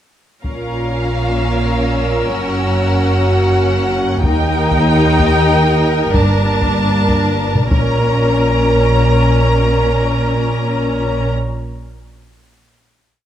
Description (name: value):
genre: cinematic, suspense film score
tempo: 95 BPM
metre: 3/4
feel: straight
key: Bb harmonic minor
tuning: A4 = 443 Hz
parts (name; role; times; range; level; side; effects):
- warm studio violin section; melody; 0.4-11.3 s; F5 to Bb5; -22 LUFS; equal; none
- rich studio violin section; second line; 0.4-11.3 s; Bb4; -22 LUFS; right 2 dB; none
- clear studio viola section; accompaniment; 0.4-11.3 s; Db4 to Eb4; -20 LUFS; left 2 dB; none
- mellow French horn section; sustained chords; 0.4-11.3 s; Bb3 to Bb4; -21 LUFS; left 3 dB; none
- rich studio double bass section; bass; 0.4-11.3 s; Gb1 to Eb2; -18 LUFS; right 1 dB; none
- warm studio cello section; bass; 0.4-11.3 s; Eb2 to Bb2; -20 LUFS; right 1 dB; none
- solo taiko drums; drums; 0.4-8.9 s; none; -19 LUFS; left 1 dB; none
- warm studio violin section; texture; 0.4-3.9, 7.7-11.5 s; Db5 to D7; -30 LUFS; left 4 dB; none
room: light reverb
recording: close, detailed microphones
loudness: -12 LUFS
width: side -10 dB against mid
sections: 0.4-8.0 A section; 8.0-11.8 final hit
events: drum fill 7.6-8.0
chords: 0.4 Bbm; 2.3 Gb; 4.2 Eb; 6.1 Gmadd9; 7.7 Bbm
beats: | 0.45 1.08 1.71 | 2.34 2.97 3.60 | 4.24 4.87 5.50 | 6.13 6.76 7.39 | 8.03 8.66 9.29 | 9.92 10.55 11.18